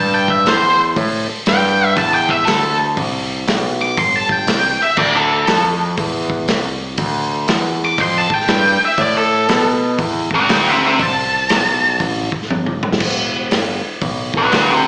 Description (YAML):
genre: blues rock power trio and southern rock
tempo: 120 BPM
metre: 4/4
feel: swing 64% on 8ths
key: A minor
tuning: A4 = 440 Hz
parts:
  - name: octave-fuzz lead guitar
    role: melody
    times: 0.0-14.9 s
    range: G4 to D6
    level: -18 LUFS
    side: equal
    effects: distortion, slapback echo
  - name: growling picked electric bass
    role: bass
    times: 0.0-14.9 s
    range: E1 to B2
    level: -22 LUFS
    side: equal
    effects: overdrive
  - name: vintage drum kit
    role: drums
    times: 0.3-14.7 s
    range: crash cymbal, hi-hat, kick drum, snare drum, toms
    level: -22 LUFS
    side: equal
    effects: none
room: light reverb, small room ambience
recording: live gig heard through the venue's PA, club reverb, small speaker sound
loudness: -16 LUFS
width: mono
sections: 0.0-14.9 A section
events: lead electric guitar solo 0.0-14.9; drum fill 12.5-13.0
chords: 0.0 Am9 (rootless); 5.0 Dm9; 9.0 Am9; 13.0 Em7